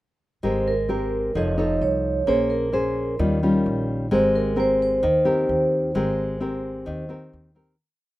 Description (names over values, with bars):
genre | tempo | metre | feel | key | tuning
bossa nova | 131 BPM | 4/4 | straight | Ab major | A4 = 440 Hz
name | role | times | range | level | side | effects
nylon-string guitar | accompaniment | 0.4-7.8 s | Eb3 to Db5 | -23 LUFS | left 2 dB | none
upright bass | bass | 0.4-7.8 s | F1 to Eb2 | -28 LUFS | equal | none
vibraphone with soft mallets | melody | 0.5-7.3 s | Bb4 to Eb5 | -24 LUFS | right 2 dB | none
room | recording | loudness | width
light reverb | rough home demo mix | -20 LUFS | side -16 dB against mid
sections
0.4-7.8 A section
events
fade-out 5.9-7.8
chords
0.4 Abmaj9; 1.3 F7b13; 2.3 Bbm9; 3.2 Eb9; 4.1 Abmaj9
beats
| 0.43 0.89 1.35 1.81 | 2.27 2.73 3.19 3.65 | 4.11 4.57 5.03 5.49 | 5.94 6.40 6.86 7.32